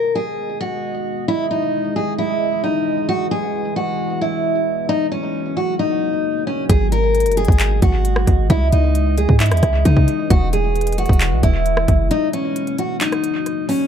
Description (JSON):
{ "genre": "hip hop, trap", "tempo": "133 BPM", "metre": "4/4", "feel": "half-time", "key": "G# minor", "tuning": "A4 = 438 Hz", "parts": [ { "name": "picked steel-string acoustic guitar", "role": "melody", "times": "0.0-13.9 s", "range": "C#4 to A#4", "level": "-20 LUFS", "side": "equal", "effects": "low-pass filter, analog delay" }, { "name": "deep dark ambient pad", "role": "sustained chords", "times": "0.1-13.9 s", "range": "B2 to D#5", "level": "-25 LUFS", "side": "right 1 dB", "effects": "chorus, built-in reverb" }, { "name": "warm 808-style bass", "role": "bass", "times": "6.7-12.1 s", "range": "E1 to C#3", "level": "-17 LUFS", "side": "equal", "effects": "none" }, { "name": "trap drum kit", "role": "drums", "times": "6.7-13.8 s", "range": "handclaps, hi-hat, kick drum, rim click", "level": "-17 LUFS", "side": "equal", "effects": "none" } ], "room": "little or no reverb", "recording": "echo-heavy mix", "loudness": "-16 LUFS", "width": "side -8 dB against mid", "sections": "0.0-13.9 A section", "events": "break 12.1-13.9", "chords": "0.0 G#m; 1.3 C#madd9; 3.1 E; 4.9 F#; 6.7 G#m; 8.5 C#madd9; 10.3 E; 12.1 F#" }